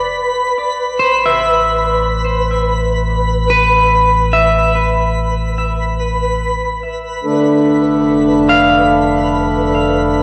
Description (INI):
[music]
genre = ambient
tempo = 72 BPM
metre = 4/4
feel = straight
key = unclear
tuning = A4 = 440 Hz
[part]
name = electric guitar at the edge of break-up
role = arpeggios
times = 0.0-10.2 s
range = B4 to F5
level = -18 LUFS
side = equal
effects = analog delay
[part]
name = round analog bass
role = bass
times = 0.0-10.2 s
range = F1 to A1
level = -22 LUFS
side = equal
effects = tube saturation
[part]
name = twinkling granular texture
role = texture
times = 0.0-10.2 s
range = B4 to B5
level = -21 LUFS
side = equal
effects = built-in reverb
[part]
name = pedal harmonium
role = drone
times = 7.2-10.2 s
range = D3 to A3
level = -14 LUFS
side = equal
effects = none
[sound]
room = wet lush hall reverb, RT60 2.6 s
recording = home recording on cassette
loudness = -14 LUFS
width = mono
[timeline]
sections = 0.0-10.2 A section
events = fade-out on synth texture 0.0-10.2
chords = 0.0 N.C.; 0.6 A5; 7.2 F